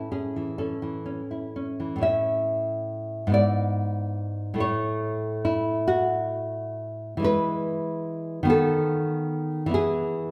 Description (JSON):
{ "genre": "romantic duo for nylon-string guitar and classical guitar", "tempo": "47 BPM (dotted quarters)", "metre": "6/8", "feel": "uneven beats, rubato", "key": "A major", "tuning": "A4 = 436 Hz", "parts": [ { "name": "nylon-string guitar", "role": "melody", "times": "0.0-0.5 s", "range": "A4", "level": "-49 LUFS", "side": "equal", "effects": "none" }, { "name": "nylon-string guitar", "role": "accompaniment", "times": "0.0-10.3 s", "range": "G#2 to E5", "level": "-26 LUFS", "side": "equal", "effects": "none" } ], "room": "moderate recital hall reverb, RT60 1.4 s", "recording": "recorded in a church or concert hall", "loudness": "-26 LUFS", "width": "mono", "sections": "0.0-2.0 A section; 2.0-10.3 B section", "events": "none", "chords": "0.0 A; 3.3 E7/G#; 4.6 A; 7.2 E; 8.5 B7/D#; 9.7 E", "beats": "0.59 | 2.02 3.34 | 4.61 5.87 | 7.23 8.49 | 9.73" }